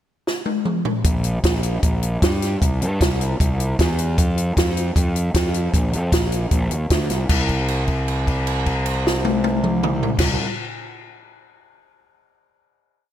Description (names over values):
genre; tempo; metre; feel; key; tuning
indie rock; 154 BPM; 4/4; straight; unclear; A4 = 439 Hz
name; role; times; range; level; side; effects
compact cocktail drum kit; drums; 0.3-10.3 s; crash cymbal, hi-hat, kick drum, snare drum, toms; -20 LUFS; equal; none
fuzz fingered electric bass; bass; 1.0-10.3 s; Bb1 to G2; -21 LUFS; equal; overdrive
room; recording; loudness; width
light reverb; none; -18 LUFS; side -11 dB against mid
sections
0.0-1.0 pickup bar; 1.0-7.3 pre-chorus; 7.3-10.4 final note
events
drum fill 0.3-1.0; held note 7.3-10.2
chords
none